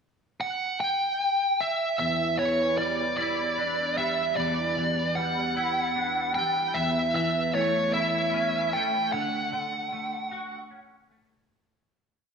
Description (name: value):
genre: post-rock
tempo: 50 BPM (dotted quarters)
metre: 6/8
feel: straight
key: E dorian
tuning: A4 = 440 Hz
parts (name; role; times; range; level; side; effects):
- bluesy overdriven lead guitar; melody; 0.4-11.1 s; C#5 to G5; -26 LUFS; right 1 dB; distortion, slapback echo, analog delay
- twangy electric guitar; arpeggios; 2.0-11.5 s; E2 to F#4; -29 LUFS; equal; ensemble chorus, slapback echo, analog delay
room: wet lush hall reverb, RT60 2.1 s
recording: big arena sound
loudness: -24 LUFS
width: side -6 dB against mid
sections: 0.0-2.0 pickup bar; 2.0-11.5 A section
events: fade-out 9.1-11.5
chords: 0.0 N.C.; 2.0 Em7; 6.8 A/E; 9.1 Dmaj7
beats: 0.81 | 2.00 3.19 | 4.38 5.56 | 6.75 7.94 | 9.13 10.31